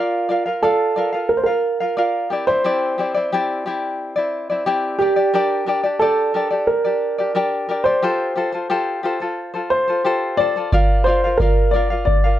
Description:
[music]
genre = acoustic pop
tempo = 89 BPM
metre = 4/4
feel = straight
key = F major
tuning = A4 = 440 Hz
[part]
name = dark upright piano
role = melody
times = 0.0-12.4 s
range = F4 to D5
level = -19 LUFS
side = right 1 dB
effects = none
[part]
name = tenor ukulele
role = accompaniment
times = 0.0-12.4 s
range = C4 to F5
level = -20 LUFS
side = left 1 dB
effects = none
[part]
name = electronic kick drum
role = drums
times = 10.7-12.2 s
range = none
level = -17 LUFS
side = equal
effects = none
[sound]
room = light reverb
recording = dark, warm production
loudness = -17 LUFS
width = side -12 dB against mid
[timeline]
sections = 0.0-12.4 A section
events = none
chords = 0.0 Bb; 2.3 Cadd9; 5.0 Gm; 8.0 Fadd9; 10.7 Bb

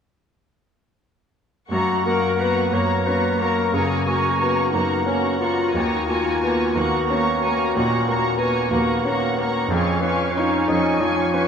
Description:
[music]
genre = classical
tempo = 60 BPM (dotted quarters)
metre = 12/8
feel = rubato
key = F# major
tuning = A4 = 440 Hz
[part]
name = bright concert grand piano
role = melody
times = 1.7-11.5 s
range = D#2 to D#4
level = -22 LUFS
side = left 1 dB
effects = none
[part]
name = muted chamber violin section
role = melody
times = 1.7-11.5 s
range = E#5 to A#5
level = -30 LUFS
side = left 2 dB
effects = none
[part]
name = muted chamber violin section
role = second line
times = 1.7-11.5 s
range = G#5 to C#6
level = -27 LUFS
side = left 1 dB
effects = none
[part]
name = warm clarinet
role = second line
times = 1.7-11.5 s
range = C#4 to D#5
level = -25 LUFS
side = equal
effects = none
[part]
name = muted studio viola section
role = accompaniment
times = 1.7-11.5 s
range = A#3 to F#4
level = -27 LUFS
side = equal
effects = none
[part]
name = muted chamber cello section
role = bass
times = 1.7-11.5 s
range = D#2 to F#2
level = -30 LUFS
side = right 3 dB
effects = none
[sound]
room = wet recital hall reverb, RT60 1.6 s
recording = recorded in a church or concert hall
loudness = -18 LUFS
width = side -7 dB against mid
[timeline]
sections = 1.7-11.5 A section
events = none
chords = 1.7 F#; 5.7 D#m7; 9.7 C#/E#

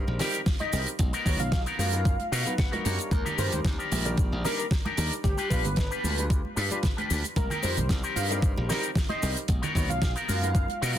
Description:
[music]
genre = nu-disco, nu disco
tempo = 113 BPM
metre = 4/4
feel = straight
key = unclear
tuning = A4 = 441 Hz
[part]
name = warm grand piano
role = accompaniment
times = 0.0-11.0 s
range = Eb3 to F5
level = -36 LUFS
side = left 1 dB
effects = sidechain pumping, dub echo
[part]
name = glassy slap bass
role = bass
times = 0.0-10.9 s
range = G1 to B2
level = -29 LUFS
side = equal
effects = none
[part]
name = congas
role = percussion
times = 0.1-11.0 s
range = none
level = -38 LUFS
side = right 4 dB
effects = none
[part]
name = electric guitar with an envelope filter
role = riff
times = 0.2-11.0 s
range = B3 to F#5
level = -33 LUFS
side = left 3 dB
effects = wide subtle chorus, vintage 12-bit sampler grit
[part]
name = damped 70s drum kit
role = drums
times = 0.2-11.0 s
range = cabasa, hi-hat, snare drum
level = -32 LUFS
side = right 2 dB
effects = none
[part]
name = electronic kick drum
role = drums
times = 0.5-10.7 s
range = none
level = -26 LUFS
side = equal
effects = overdrive
[part]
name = wide unison lead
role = melody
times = 0.6-11.0 s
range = G4 to F5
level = -35 LUFS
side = equal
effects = dub echo
[sound]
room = small room ambience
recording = dense, heavily limited modern master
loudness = -24 LUFS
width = side -11 dB against mid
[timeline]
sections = 0.0-11.0 A section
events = clean electric guitar fill 2.1-3.1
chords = 0.0 Cm7; 1.0 Bmaj7; 3.1 Ebmaj7; 5.2 G7; 7.4 Cm7; 9.5 Bmaj7

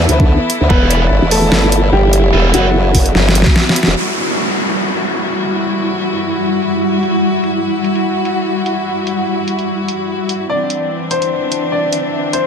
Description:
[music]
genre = heavy wobble dubstep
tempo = 147 BPM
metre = 4/4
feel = swing 54% on 16ths, half-time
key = E minor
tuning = A4 = 440 Hz
[part]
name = clear grand piano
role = melody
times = 0.0-3.9, 10.5-12.5 s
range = F#3 to D5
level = -18 LUFS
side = equal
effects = dub echo
[part]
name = rich chamber string section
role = sustained chords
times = 0.0-12.5 s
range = E3 to F#4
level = -19 LUFS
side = left 2 dB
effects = sidechain pumping
[part]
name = formant-sweep wobble bass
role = bass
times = 0.0-4.0 s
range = E1 to D2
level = -13 LUFS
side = equal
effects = chorus, overdrive
[part]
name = dubstep drum kit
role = drums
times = 0.1-12.4 s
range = crash cymbal, hi-hat, snare drum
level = -16 LUFS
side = equal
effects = overdrive, low-pass filter on hats, low-pass filter on snare, low-pass filter on cymbals, low-pass filter on room
[part]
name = electronic kick drum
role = drums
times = 0.2-3.5 s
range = none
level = -12 LUFS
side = equal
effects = overdrive
[part]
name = high-gain distorted guitar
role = stabs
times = 0.7-2.7 s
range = G3 to E4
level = -21 LUFS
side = right 3 dB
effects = distortion, dub echo
[part]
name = formant-sweep wobble bass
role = bass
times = 0.7-3.4 s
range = E1 to G1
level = -12 LUFS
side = equal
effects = chorus, overdrive
[part]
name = downlifter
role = sound effects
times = 4.0-7.2 s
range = none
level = -20 LUFS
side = equal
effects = none
[part]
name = granular cloud pad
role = texture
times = 4.9-12.5 s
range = G3 to F#5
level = -18 LUFS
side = equal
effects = built-in reverb, sidechain pumping
[sound]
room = light reverb, digital ambience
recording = none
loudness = -12 LUFS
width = side -7 dB against mid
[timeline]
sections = 0.0-4.0 A section; 4.0-12.5 B section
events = drop 0.0-4.0; drum fill 3.1-4.0; band accent 3.8; filter sweep on drum 4.0-12.5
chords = 0.0 Em; 4.0 Emadd9; 10.5 Cadd9

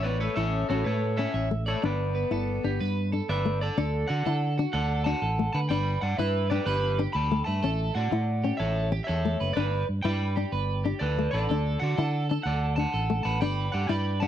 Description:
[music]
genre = highlife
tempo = 124 BPM (dotted quarters)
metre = 12/8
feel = straight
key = D major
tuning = A4 = 439 Hz
[part]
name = electric guitar at the edge of break-up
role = melody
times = 0.0-14.3 s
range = G4 to B5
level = -31 LUFS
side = equal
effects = none
[part]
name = growling alto saxophone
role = second line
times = 0.0-3.4 s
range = A3 to C#4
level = -36 LUFS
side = left 12 dB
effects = slapback echo
[part]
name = flamenco guitar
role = accompaniment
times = 0.0-14.3 s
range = A3 to E4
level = -31 LUFS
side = left 6 dB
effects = none
[part]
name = electric guitar at the edge of break-up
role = arpeggios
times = 0.0-14.3 s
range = F#4 to E5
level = -35 LUFS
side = right 6 dB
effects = lush chorus, slapback echo
[part]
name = fingered electric bass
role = bass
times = 0.0-14.3 s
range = F#1 to D3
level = -28 LUFS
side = right 1 dB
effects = none
[sound]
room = small room ambience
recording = dry, close 1970s-style studio recording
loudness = -25 LUFS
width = side -10 dB against mid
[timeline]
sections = 0.0-3.8 A section; 3.8-14.3 B section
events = none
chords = 0.0 A; 1.8 G; 3.8 D; 5.7 G; 7.6 A; 9.6 G; 11.5 D; 13.4 G

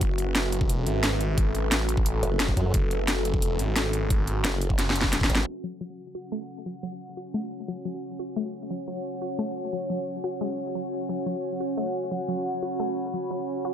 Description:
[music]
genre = dark technical drum and bass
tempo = 176 BPM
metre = 4/4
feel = straight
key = F# minor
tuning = A4 = 438 Hz
[part]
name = dark analog pad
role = sustained chords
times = 0.0-13.7 s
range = C#4 to F#5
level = -33 LUFS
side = left 1 dB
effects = chorus, sidechain pumping
[part]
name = snarling distorted saw bass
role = bass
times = 0.0-5.3 s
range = F#1 to A1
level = -28 LUFS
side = equal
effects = distortion, overdrive, sidechain pumping
[part]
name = drum and bass drum kit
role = drums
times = 0.0-13.7 s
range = hi-hat, snare drum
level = -26 LUFS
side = equal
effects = overdrive, low-pass filter on hats, low-pass filter on snare, low-pass filter on room
[part]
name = electronic kick drum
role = drums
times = 0.0-5.4 s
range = none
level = -25 LUFS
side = equal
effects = overdrive
[part]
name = warbly tape-like pad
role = texture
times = 0.0-13.7 s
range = C#4 to B5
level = -34 LUFS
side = right 3 dB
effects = chorus, built-in reverb, phaser, sidechain pumping
[part]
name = formant-sweep wobble bass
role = bass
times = 2.2-5.5 s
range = F#1 to F#2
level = -27 LUFS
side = equal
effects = chorus
[part]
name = wide unison pluck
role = arpeggios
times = 5.6-13.7 s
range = F#3 to F#4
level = -34 LUFS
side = left 2 dB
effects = sidechain pumping, ping-pong delay
[sound]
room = light reverb, digital ambience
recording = low-pass filter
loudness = -25 LUFS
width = side -9 dB against mid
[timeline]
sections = 0.0-5.5 A section; 5.5-13.7 B section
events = drum fill 4.8-5.5; filter sweep on synth arpeggio sound 5.5-13.7; filter sweep 5.5-13.7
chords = 0.0 F#5

